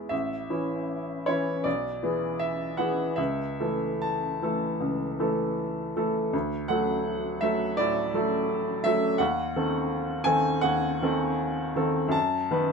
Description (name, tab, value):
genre	classical, romantic character piece for solo piano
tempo	67-86 BPM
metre	4/4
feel	rubato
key	A major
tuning	A4 = 440 Hz
part	clear upright piano	solo	0.0-12.7 s	A1 to A5	-25 LUFS	equal	none
room	light reverb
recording	minimal, uncompressed stereo recording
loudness	-25 LUFS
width	side -5 dB against mid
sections	0.1-12.7 A section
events	none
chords	0.1 A; 1.7 E7/B; 3.2 A/C#; 6.3 D; 9.2 D#dim7; 12.1 B7/F#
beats	| 0.12 0.89 1.65 2.41 | 3.18 4.03 4.82 5.58 | 6.33 7.05 7.78 8.49 | 9.20 9.90 10.64 11.39 | 12.14